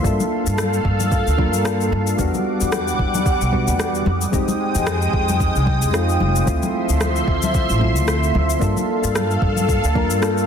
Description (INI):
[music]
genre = sunset chillout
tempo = 112 BPM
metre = 4/4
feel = swing 56% on 16ths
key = unclear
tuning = A4 = 440 Hz
[part]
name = soft electric-piano-like synth keys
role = accompaniment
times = 0.0-10.5 s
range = G3 to Bb4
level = -24 LUFS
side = equal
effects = chorus, auto-pan, digital delay
[part]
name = lush unison pad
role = sustained chords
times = 0.0-10.5 s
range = F3 to Eb6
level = -23 LUFS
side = equal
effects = chorus, phaser
[part]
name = upright bass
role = bass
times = 0.0-10.4 s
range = F1 to G2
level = -21 LUFS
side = equal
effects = none
[part]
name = electronic kick drum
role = drums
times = 0.0-10.1 s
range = none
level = -22 LUFS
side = equal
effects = overdrive, studio reverb
[part]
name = electronic cabasa and rim click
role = drums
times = 0.1-10.5 s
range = none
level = -26 LUFS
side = left 2 dB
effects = overdrive, studio reverb
[part]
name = congas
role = percussion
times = 0.2-10.1 s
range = none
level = -28 LUFS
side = left 5 dB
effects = none
[sound]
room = light reverb, digital ambience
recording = dense, heavily limited modern master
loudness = -16 LUFS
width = side -7 dB against mid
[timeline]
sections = 0.0-10.5 A section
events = none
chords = 0.0 Gm9; 2.2 Em9; 4.1 Fm9; 6.5 Dm9; 8.6 Gm9